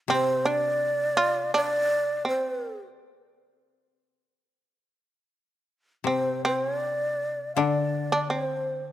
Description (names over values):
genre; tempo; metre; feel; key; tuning
japanese traditional, Japanese chamber music; 75-85 BPM; 4/4; rubato; unclear; A4 = 440 Hz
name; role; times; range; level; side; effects
breathy mellow long shakuhachi; melody; 0.1-8.8 s; C5 to F5; -26 LUFS; right 1 dB; none
shamisen; second line; 0.1-8.8 s; C4 to F4; -27 LUFS; right 2 dB; none
koto; accompaniment; 0.1-8.9 s; C3 to D3; -31 LUFS; left 6 dB; none
room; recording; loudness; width
light reverb; close, detailed microphones; -24 LUFS; side -13 dB against mid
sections
0.0-8.9 A section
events
none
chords
none